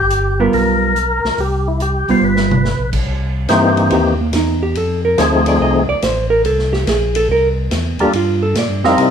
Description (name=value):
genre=soul jazz organ trio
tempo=142 BPM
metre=4/4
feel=swing 67% on 8ths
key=unclear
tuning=A4 = 438 Hz
part: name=percussive tonewheel organ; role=melody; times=0.0-9.1 s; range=E3 to C5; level=-15 LUFS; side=left 2 dB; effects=slow rotary speaker, overdrive, chorus vibrato
part: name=tonewheel organ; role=bass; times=0.0-9.1 s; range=G1 to C3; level=-19 LUFS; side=equal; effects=chorus vibrato, stopped rotary speaker
part: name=vintage drum kit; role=drums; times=0.1-9.1 s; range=crash cymbal, hi-hat, kick drum, ride cymbal, snare drum, toms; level=-23 LUFS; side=equal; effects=none
part: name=hollow-body jazz guitar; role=accompaniment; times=0.4-9.1 s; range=G3 to F5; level=-16 LUFS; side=right 3 dB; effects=none
room=moderate large studio reverb, RT60 1.1 s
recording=band playing live in one room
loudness=-13 LUFS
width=side -7 dB against mid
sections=0.0-3.1 A section; 3.1-9.1 B section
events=drum fill 2.2-2.6; hollow-body jazz guitar solo 3.1-9.1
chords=0.0 G7#9; 1.4 C5; 2.2 G7#9; 3.1 C7#9; 4.8 F7#9; 6.5 C7; 8.1 Gm7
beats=0.11 0.53 0.96 | 1.38 1.80 2.23 2.65 | 3.07 3.50 3.92 4.34 | 4.76 5.18 5.61 6.03 | 6.45 6.87 7.29 7.72 | 8.14 8.56 8.98